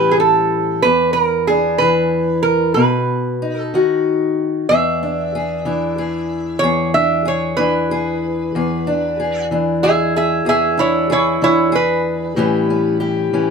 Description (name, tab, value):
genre	acoustic country blues, solo or duo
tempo	62 BPM (dotted quarters)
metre	12/8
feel	straight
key	E mixolydian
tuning	A4 = 440 Hz
part	lap resonator guitar	melody	0.0-13.5 s	E4 to E5	-16 LUFS	right 3 dB	none
part	fingerpicked steel-string acoustic guitar	accompaniment	0.0-13.5 s	E2 to G#4	-18 LUFS	left 2 dB	none
room	moderate studio reverb, RT60 0.6 s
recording	none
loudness	-14 LUFS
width	side -5 dB against mid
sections	0.0-4.7 A section; 4.7-13.5 B section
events	resonator guitar played with a steel bar solo 4.7-13.5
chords	0.0 A7; 0.9 E7; 2.8 B; 4.7 E7; 12.4 A7